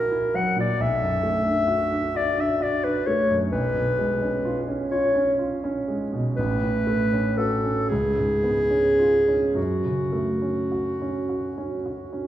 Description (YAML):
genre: classical, romantic duo for clarinet and grand piano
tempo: 34-45 BPM (dotted quarters)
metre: 6/8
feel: rubato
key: F# minor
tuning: A4 = 440 Hz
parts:
  - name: warm clarinet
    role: melody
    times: 0.0-12.3 s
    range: F#4 to F#5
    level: -23 LUFS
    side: left 1 dB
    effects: none
  - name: warm grand piano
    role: accompaniment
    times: 0.0-12.3 s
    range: A1 to F#4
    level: -25 LUFS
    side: right 1 dB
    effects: none
room: wet recital hall reverb, RT60 1.8 s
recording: heard from further back in the room, nothing above 10.5 kHz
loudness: -21 LUFS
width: side -12 dB against mid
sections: 0.0-12.3 A section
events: none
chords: 0.0 F#7/A#; 0.8 Bm7; 3.5 C#7/B; 6.4 F#m/A; 7.9 C#7; 9.6 F#m